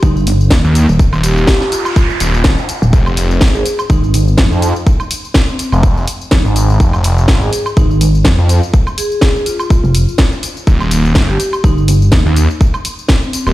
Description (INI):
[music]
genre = bass house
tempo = 124 BPM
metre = 4/4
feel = swing 55% on 16ths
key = F minor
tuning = A4 = 438 Hz
[part]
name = vibraphone with medium mallets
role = melody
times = 0.0-13.4 s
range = C4 to Ab4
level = -21 LUFS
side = moving between left 4 dB and right 5 dB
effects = auto-pan, dub echo
[part]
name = pulsing pluck wobble bass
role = bass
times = 0.0-12.2 s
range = Eb1 to F2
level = -11 LUFS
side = equal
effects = chorus, overdrive, sidechain pumping
[part]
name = electronic kick drum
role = drums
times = 0.0-13.2 s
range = none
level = -11 LUFS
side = equal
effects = none
[part]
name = garage drum kit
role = drums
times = 0.0-13.5 s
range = hi-hat, snare drum, tambourine, woodblock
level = -19 LUFS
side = equal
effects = none
[part]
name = phased detuned saw bass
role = bass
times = 0.6-13.5 s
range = Eb1 to F2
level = -12 LUFS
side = equal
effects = phaser, tube saturation, sidechain pumping
[part]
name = noise sweep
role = sound effects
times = 1.1-2.9 s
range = none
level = -23 LUFS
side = right 4 dB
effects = none
[sound]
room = little or no reverb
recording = played on a big sound system in a bare room, stone room reverb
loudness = -10 LUFS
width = side -16 dB against mid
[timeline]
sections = 0.0-13.5 A section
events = noise sweep 1.1-2.9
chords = 0.0 Eb; 2.9 Fm; 10.7 Eb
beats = 0.03 0.51 | 0.99 1.48 1.96 2.45 | 2.93 3.41 3.90 4.38 | 4.87 5.35 5.83 6.32 | 6.80 7.29 7.77 8.25 | 8.74 9.22 9.70 10.19 | 10.67 11.16 11.64 12.12 | 12.61 13.09